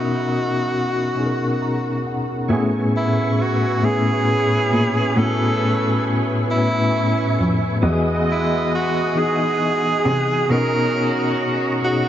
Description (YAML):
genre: R&B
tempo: 45 BPM (dotted quarters)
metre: 6/8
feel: straight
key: unclear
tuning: A4 = 440 Hz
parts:
  - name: breathy tenor saxophone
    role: melody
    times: 0.0-12.1 s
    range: E4 to A#4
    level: -22 LUFS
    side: right 1 dB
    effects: tape echo
  - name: tine electric piano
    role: accompaniment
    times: 0.0-12.1 s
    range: A2 to A#5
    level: -20 LUFS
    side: left 1 dB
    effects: medium tremolo
  - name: tonewheel organ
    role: sustained chords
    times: 2.5-12.1 s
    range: G#4 to D#6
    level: -28 LUFS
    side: right 2 dB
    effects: chorus vibrato, slow rotary speaker
  - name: muted cello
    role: bass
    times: 2.5-12.1 s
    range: E2 to C3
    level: -23 LUFS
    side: right 1 dB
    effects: none
  - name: clear horn section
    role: stabs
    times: 3.8-12.1 s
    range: G#3 to D#5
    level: -28 LUFS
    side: right 2 dB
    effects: tape echo
room: wet huge ambient reverb, RT60 8.7 s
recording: dreamy mix soaked in reverb, nothing above 7.7 kHz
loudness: -17 LUFS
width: side -11 dB against mid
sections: 0.0-2.5 A section; 2.5-12.1 B section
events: break 0.0-2.5; tine electric piano fill 1.2-2.5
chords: 0.0 Bmaj9; 2.5 Amaj9; 7.8 Emaj9; 10.5 Bmaj9